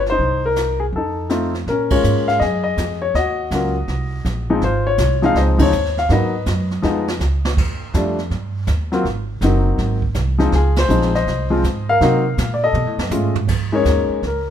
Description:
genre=jazz piano trio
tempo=162 BPM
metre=4/4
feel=swing 65% on 8ths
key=Bb minor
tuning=A4 = 439 Hz
part: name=clear grand piano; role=melody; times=0.0-14.5 s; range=F3 to F5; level=-18 LUFS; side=left 3 dB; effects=none
part: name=upright bass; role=bass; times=0.0-14.5 s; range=Gb1 to C3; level=-20 LUFS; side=right 1 dB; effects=none
part: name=jazz brush drum kit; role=drums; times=0.1-14.5 s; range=brushed snare drum, crash cymbal, hi-hat, kick drum, ride cymbal, snare drum, toms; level=-25 LUFS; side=right 3 dB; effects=none
room=light reverb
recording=minimal, uncompressed stereo recording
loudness=-16 LUFS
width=side -9 dB against mid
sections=0.0-1.7 A section; 1.7-13.5 B section; 13.5-14.5 C section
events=band accent 1.9, 5.5, 10.7; drum fill 6.8-7.6, 12.8-13.5; grand piano solo 13.5-14.5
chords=0.2 Cm7; 0.9 F7; 1.7 Bbm7; 3.1 Ebm7; 3.9 Ab7 (rootless); 4.6 Dbmaj9; 6.1 Abm7; 6.8 Db9; 7.6 Ebadd9; 9.1 Ab7; 10.5 Dbmaj9; 12.0 Cm7b5; 12.8 B13; 13.5 Bbm11

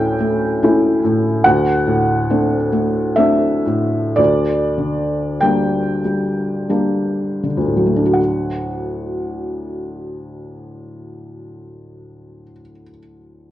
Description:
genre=classical, romantic nocturne for solo piano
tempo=36-73 BPM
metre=3/4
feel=rubato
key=D major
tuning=A4 = 441 Hz
part: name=felt-muted upright piano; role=solo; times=0.0-13.5 s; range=D2 to G5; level=-16 LUFS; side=equal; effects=none
room=wet large studio reverb, RT60 1.2 s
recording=worn, warbling old tape, cassette tape, warbly pitch drift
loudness=-15 LUFS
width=side -13 dB against mid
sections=0.0-8.2 A section; 8.2-12.0 B section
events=slowing down 0.2-8.2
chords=0.0 A7/D; 1.4 D7; 4.2 Gm/D; 8.2 D

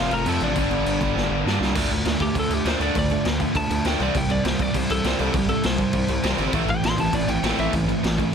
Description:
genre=punk rock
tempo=201 BPM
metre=4/4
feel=straight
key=D minor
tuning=A4 = 438 Hz
part: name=lightly driven lead guitar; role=melody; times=0.0-7.7 s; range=D4 to C6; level=-27 LUFS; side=left 1 dB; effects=none
part: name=biting overdriven guitar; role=riff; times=0.0-8.3 s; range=F2 to D4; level=-28 LUFS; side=left 12 dB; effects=none
part: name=cranked stack guitar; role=riff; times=0.0-8.3 s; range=F2 to D4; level=-27 LUFS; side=right 14 dB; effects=overdrive
part: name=fuzz guitar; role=riff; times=0.0-8.3 s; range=F2 to A4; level=-30 LUFS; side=left 1 dB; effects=distortion
part: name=gritty driven synth bass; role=bass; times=0.0-8.2 s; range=F1 to G2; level=-27 LUFS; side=equal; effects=none
part: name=raw garage drum kit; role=drums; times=0.1-8.3 s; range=crash cymbal, kick drum, snare drum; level=-26 LUFS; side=equal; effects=none
room=light reverb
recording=none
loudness=-20 LUFS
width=side -7 dB against mid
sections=0.0-1.8 A section; 1.8-8.3 B section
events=half time 0.0-1.8; drum fill 1.2-1.8; lead electric guitar solo 1.8-8.3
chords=0.0 F; 0.6 G; 1.8 Dm; 4.0 C; 6.5 Am

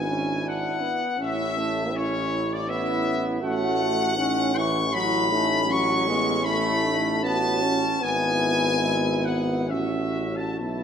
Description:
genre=classical, hymn-like piece for brass band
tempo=62-84 BPM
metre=3/4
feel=rubato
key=A major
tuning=A4 = 439 Hz
part: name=warm trumpet section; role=melody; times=0.0-10.8 s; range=C#5 to C#6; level=-25 LUFS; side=left 3 dB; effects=none
part: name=warm French horn section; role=second line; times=0.0-10.8 s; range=C#4 to F#4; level=-31 LUFS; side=right 6 dB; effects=none
part: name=dark euphonium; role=accompaniment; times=0.0-10.8 s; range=B3 to E4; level=-30 LUFS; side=left 2 dB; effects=none
part: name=mellow trombone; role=accompaniment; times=0.0-10.8 s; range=E3 to D4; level=-30 LUFS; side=right 2 dB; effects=none
part: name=warm tuba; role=bass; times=0.0-10.8 s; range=G#1 to B1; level=-30 LUFS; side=right 1 dB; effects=none
room=wet scoring stage reverb, RT60 1.9 s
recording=none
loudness=-22 LUFS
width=side -8 dB against mid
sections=0.0-10.8 A section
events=none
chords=0.0 E7/G#; 1.2 A; 3.4 F#m7/A; 5.7 B7/A; 8.0 E/G#; 9.7 F#m7/A

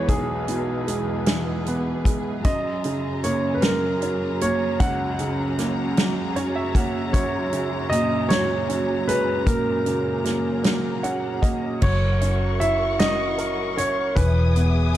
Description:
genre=six-eight pop ballad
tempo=51 BPM (dotted quarters)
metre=6/8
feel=straight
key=unclear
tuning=A4 = 439 Hz
part: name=clear concert grand piano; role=melody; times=0.0-15.0 s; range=G#4 to F#5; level=-26 LUFS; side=equal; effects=none
part: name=clear upright piano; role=accompaniment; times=0.0-15.0 s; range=B1 to F#5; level=-25 LUFS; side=right 2 dB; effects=none
part: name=warm studio string section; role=sustained chords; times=0.0-15.0 s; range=E2 to D#6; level=-30 LUFS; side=left 2 dB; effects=none
part: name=natural country drum kit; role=drums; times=0.1-15.0 s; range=crash cymbal, hi-hat, kick drum, snare drum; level=-24 LUFS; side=equal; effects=none
part: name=vintage muted fingered electric bass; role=bass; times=11.8-15.0 s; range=E1 to F#1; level=-22 LUFS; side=equal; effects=none
room=light reverb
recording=dark, warm production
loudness=-20 LUFS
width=side -12 dB against mid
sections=0.0-11.8 A section; 11.8-15.0 B section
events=upright piano fill 6.0-7.1, 10.6-11.8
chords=0.0 E; 2.4 F#add9; 11.8 F#7; 14.2 Emaj7

